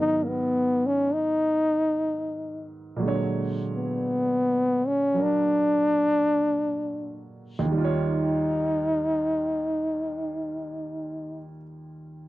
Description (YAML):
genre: jazz ballad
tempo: 42-69 BPM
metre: 4/4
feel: swing 68% on 8ths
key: Eb minor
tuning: A4 = 442 Hz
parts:
  - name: warm trombone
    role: melody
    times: 0.0-11.5 s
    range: Bb3 to Eb4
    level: -23 LUFS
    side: left 1 dB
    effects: none
  - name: clear upright piano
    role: accompaniment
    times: 0.0-12.3 s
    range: Eb2 to C#5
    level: -30 LUFS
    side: right 2 dB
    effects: none
room: moderate booth ambience, RT60 0.2 s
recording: dry, close 1970s-style studio recording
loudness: -23 LUFS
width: side -16 dB against mid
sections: 0.0-7.7 A section; 7.7-12.3 B section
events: slowing down 0.0-7.7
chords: 0.0 Abm9; 3.0 Bb7alt; 7.7 Eb7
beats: 0.24 1.12 2.04 | 3.01 4.04 5.15 6.36 | 7.71 9.13 10.54 11.94